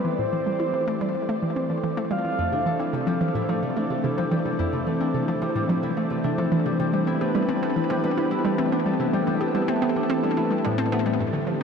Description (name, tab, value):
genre	ambient, sequencer-driven space music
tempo	109 BPM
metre	4/4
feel	straight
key	unclear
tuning	A4 = 440 Hz
part	soft octave-layered synth lead	melody	0.0-2.9 s	B4 to F5	-30 LUFS	equal	chorus, phaser, shimmer reverb, ping-pong delay
part	lush unison pad	sustained chords	0.0-11.6 s	D3 to D5	-26 LUFS	right 1 dB	chorus, shimmer reverb
part	hollow square pluck	riff	0.0-11.6 s	F2 to G4	-26 LUFS	equal	chorus, shimmer reverb, ping-pong delay
part	concert harp	arpeggios	2.4-11.6 s	A2 to A4	-28 LUFS	left 4 dB	auto-pan, shimmer reverb, ping-pong delay
room	wet huge ambient reverb, RT60 8.9 s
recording	none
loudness	-22 LUFS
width	side -6 dB against mid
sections	0.0-11.2 A section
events	fade-in on analog synth pad 0.0-11.2; filter sweep on synth arpeggio sound 0.0-11.2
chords	0.0 Am7; 2.4 Fmaj7; 6.8 Cmaj7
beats	| 0.19 0.74 1.29 1.84 | 2.39 2.94 3.49 4.04 | 4.59 5.14 5.69 6.24 | 6.79 7.34 7.89 8.45 | 9.00 9.55 10.10 10.65 | 11.20